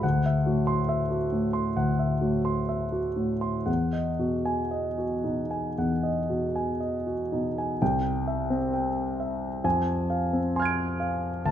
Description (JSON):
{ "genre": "classical, impressionist solo piano", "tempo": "56-70 BPM", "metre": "4/4", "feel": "rubato", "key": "C major from 7.8 s", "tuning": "A4 = 440 Hz", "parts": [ { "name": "warm concert grand piano", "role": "solo", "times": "0.0-11.5 s", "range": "C2 to D7", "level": "-25 LUFS", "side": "equal", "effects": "none" } ], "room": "moderate recital hall reverb, RT60 1.5 s", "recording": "close, detailed microphones", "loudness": "-25 LUFS", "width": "side -10 dB against mid", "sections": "0.0-7.8 A section; 7.8-11.5 B section", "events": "none", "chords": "0.0 D9; 3.7 Emaj9; 7.8 C; 9.6 Fm6" }